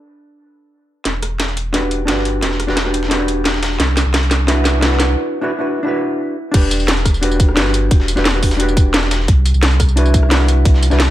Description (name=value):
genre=liquid drum and bass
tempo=175 BPM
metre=4/4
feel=straight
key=E minor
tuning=A4 = 440 Hz
part: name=hollow-body jazz guitar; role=accompaniment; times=0.0-11.1 s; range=D4 to B4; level=-19 LUFS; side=equal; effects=low-pass filter, dub echo
part: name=warm sub bass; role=bass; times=1.1-11.1 s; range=E1 to C2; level=-16 LUFS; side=equal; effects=none
part: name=drum and bass drum kit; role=drums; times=1.1-11.1 s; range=crash cymbal, hi-hat, rim click, snare drum, tambourine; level=-18 LUFS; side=equal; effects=none
part: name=dusty soul sampler-style drum kit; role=drums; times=1.1-11.1 s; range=hi-hat, snare drum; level=-25 LUFS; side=left 1 dB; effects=overdrive, high-pass filter on hats, high-pass filter on snare, high-pass filter on room
part: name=electronic kick drum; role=drums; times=6.5-10.7 s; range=none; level=-13 LUFS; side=equal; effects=none
room=light reverb, digital ambience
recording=none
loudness=-13 LUFS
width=side -14 dB against mid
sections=0.0-1.1 A section; 1.1-6.5 B section; 6.5-11.1 C section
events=build-up 1.1-6.5; drum fill 1.1-5.2; break 5.2-6.5; drop 6.5-11.1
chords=0.0 Bm7; 1.1 Em9; 3.8 Cmaj9#11; 6.4 N.C.; 6.5 Em9; 9.3 Cmaj9#11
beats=0.03 0.37 0.71 | 1.05 1.40 1.74 2.08 | 2.43 2.77 3.11 3.46 | 3.80 4.14 4.48 4.83 | 5.17 5.51 5.86 6.20 | 6.54 6.88 7.23 7.57 | 7.91 8.26 8.60 8.94 | 9.28 9.63 9.97 10.31 | 10.65 11.00